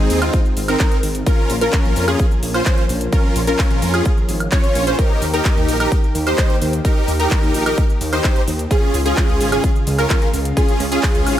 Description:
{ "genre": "EDM, festival progressive house", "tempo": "129 BPM", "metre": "4/4", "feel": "straight", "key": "unclear", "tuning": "A4 = 439 Hz", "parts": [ { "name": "lush unison pad", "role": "sustained chords", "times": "0.0-11.4 s", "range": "Db3 to G4", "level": "-26 LUFS", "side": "equal", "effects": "chorus, sidechain pumping" }, { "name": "wide unison pluck", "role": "arpeggios", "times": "0.0-11.4 s", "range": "F4 to Db5", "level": "-25 LUFS", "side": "equal", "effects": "ensemble chorus, sidechain pumping, digital delay" }, { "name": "supersaw chords", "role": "riff", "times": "0.0-11.4 s", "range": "C4 to Db5", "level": "-21 LUFS", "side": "equal", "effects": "wide subtle chorus, sidechain pumping, digital delay" }, { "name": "wide detuned saw bass", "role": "bass", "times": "0.0-11.4 s", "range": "Ab1 to F2", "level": "-21 LUFS", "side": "equal", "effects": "chorus, sidechain pumping" }, { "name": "big-room dance drum kit", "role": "drums", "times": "0.1-11.4 s", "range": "handclaps, hi-hat, shaker, woodblock", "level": "-25 LUFS", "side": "right 1 dB", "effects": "none" }, { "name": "electronic kick drum", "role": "drums", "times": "0.3-11.1 s", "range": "none", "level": "-16 LUFS", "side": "equal", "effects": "none" } ], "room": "light reverb", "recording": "none", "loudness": "-14 LUFS", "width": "side -12 dB against mid", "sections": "0.0-11.4 A section", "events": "none", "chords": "0.0 Ab; 1.3 Bbm; 5.0 Eb; 8.7 Db" }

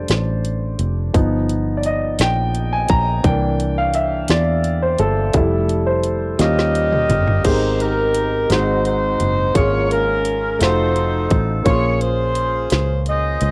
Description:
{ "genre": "slow gospel", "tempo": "57 BPM (dotted quarters)", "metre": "6/8", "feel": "straight", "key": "F major, Ab major from 7.4 s", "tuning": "A4 = 438 Hz", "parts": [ { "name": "warm grand piano", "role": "accompaniment", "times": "0.0-13.5 s", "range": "Ab2 to C6", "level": "-23 LUFS", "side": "equal", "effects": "cassette tape" }, { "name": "fingered electric bass", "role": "bass", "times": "0.0-13.5 s", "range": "F1 to E2", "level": "-23 LUFS", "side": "equal", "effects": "tube saturation" }, { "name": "garage drum kit", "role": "drums", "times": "0.1-13.5 s", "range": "crash cymbal, hi-hat, kick drum, snare drum, toms", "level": "-22 LUFS", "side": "equal", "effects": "cassette tape" }, { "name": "bright saxophone section", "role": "melody", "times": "6.4-13.5 s", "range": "Db4 to Eb5", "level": "-22 LUFS", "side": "equal", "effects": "cassette tape" } ], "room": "light reverb", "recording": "home recording on cassette", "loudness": "-18 LUFS", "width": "mono", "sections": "0.0-7.4 A section; 7.4-13.5 B section", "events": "grand piano solo 0.0-7.4; drum fill 6.4-7.4", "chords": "0.0 F6; 1.1 G7alt; 3.2 C7; 5.3 Fmaj9; 6.4 Eb9; 7.4 Abmaj9; 8.5 Ab7; 9.5 Db6/Ab; 10.6 F7b9; 11.7 Bbm9" }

